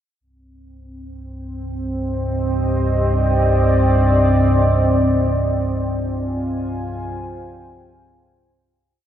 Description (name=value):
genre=dark ambient drone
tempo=free time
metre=none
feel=none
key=C minor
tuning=A4 = 440 Hz
part: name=deep dark ambient pad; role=sustained chords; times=1.5-8.9 s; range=C4 to Ab5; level=-20 LUFS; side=right 1 dB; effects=chorus, built-in reverb
part: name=deep rumbling drone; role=drone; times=1.3-9.0 s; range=C2 to G2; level=-20 LUFS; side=equal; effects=built-in reverb, wide subtle chorus
room=wet cathedral reverb, RT60 5.8 s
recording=none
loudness=-16 LUFS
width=side -10 dB against mid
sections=0.2-8.9 A section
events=fade-out 4.5-8.9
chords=0.2 Cm; 4.5 Fm/C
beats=free time